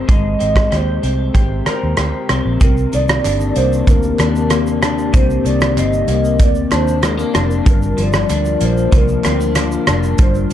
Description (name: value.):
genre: indie pop, bedroom pop.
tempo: 95 BPM.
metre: 4/4.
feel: straight.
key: C minor.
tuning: A4 = 440 Hz.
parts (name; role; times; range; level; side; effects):
electric guitar through a small old amp; accompaniment; 0.0-10.5 s; G2 to Bb4; -20 LUFS; left 5 dB; analog chorus, warbly pitch drift.
vintage muted fingered electric bass; bass; 0.0-10.4 s; F1 to Eb2; -18 LUFS; equal; none.
warbly nostalgic lead; melody; 0.1-10.3 s; Bb4 to Eb5; -21 LUFS; right 1 dB; lush chorus, tape echo.
loose indie drum kit; drums; 0.1-10.5 s; hi-hat, kick drum, rim click, shaker; -16 LUFS; right 1 dB; none.
warbly tape-like pad; sustained chords; 3.2-10.5 s; C3 to Bb4; -25 LUFS; left 1 dB; chorus, built-in reverb.
group handclap; percussion; 3.3-9.7 s; none; -33 LUFS; right 7 dB; none.
room: light reverb, small room reverb.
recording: dark, warm production.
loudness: -13 LUFS.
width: side -11 dB against mid.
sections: 0.0-2.6 A section; 2.6-10.5 B section.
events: none.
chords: 0.0 Abmaj9; 2.6 Cm9; 7.7 Gm7.